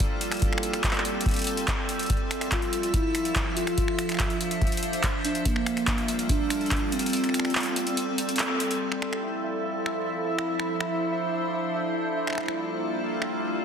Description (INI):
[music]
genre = IDM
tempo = 143 BPM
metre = 4/4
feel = straight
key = G dorian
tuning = A4 = 439 Hz
[part]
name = icy glass pad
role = sustained chords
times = 0.0-13.6 s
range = F3 to E5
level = -29 LUFS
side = equal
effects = chorus, built-in reverb
[part]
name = electro analog drum machine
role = drums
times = 0.0-13.3 s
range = finger snaps, handclaps, hi-hat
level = -30 LUFS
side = equal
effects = none
[part]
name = electronic kick drum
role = drums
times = 0.0-6.8 s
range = none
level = -28 LUFS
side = equal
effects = none
[part]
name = warbly nostalgic lead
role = melody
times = 2.5-8.4 s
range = Bb3 to F4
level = -29 LUFS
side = equal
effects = chorus, tremolo, ping-pong delay
[part]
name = pulsing gated texture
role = texture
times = 9.2-13.6 s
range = E5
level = -33 LUFS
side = right 2 dB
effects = chorus, built-in reverb
[sound]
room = wet lush hall reverb, RT60 1.6 s, digital ambience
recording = dense, heavily limited modern master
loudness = -24 LUFS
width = side -7 dB against mid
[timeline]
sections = 0.0-8.8 A section; 8.8-13.6 B section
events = kick drops out 7.1-8.8; band accent 8.4; filter sweep on ambient pad 8.8-13.6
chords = 0.4 Am7; 2.1 Fmaj7; 3.8 Dm9; 5.5 Gm9; 7.1 Am7; 8.8 Fmaj7; 10.5 Dm9; 12.2 Gm9